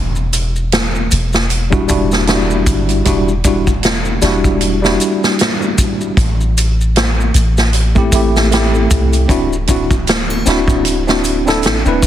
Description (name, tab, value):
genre	trip hop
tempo	77 BPM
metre	4/4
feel	swing 57% on 16ths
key	unclear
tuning	A4 = 440 Hz
part	soft 808-style bass	bass	0.0-12.1 s	D1 to C2	-16 LUFS	equal	none
part	maracas and triangle	percussion	0.2-12.1 s	none	-23 LUFS	left 2 dB	none
part	swinging big-band drum kit	drums	0.3-12.1 s	hi-hat, kick drum, snare drum	-16 LUFS	equal	none
part	tine electric piano	accompaniment	1.7-12.1 s	G3 to B4	-16 LUFS	equal	overdrive, fast stereo tremolo, harmonic tremolo, tape echo
room	small room ambience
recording	heavily compressed radio sound, multiband compression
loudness	-11 LUFS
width	side -11 dB against mid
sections	0.0-12.1 A section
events	none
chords	0.0 Em9; 6.2 Am7; 9.3 D9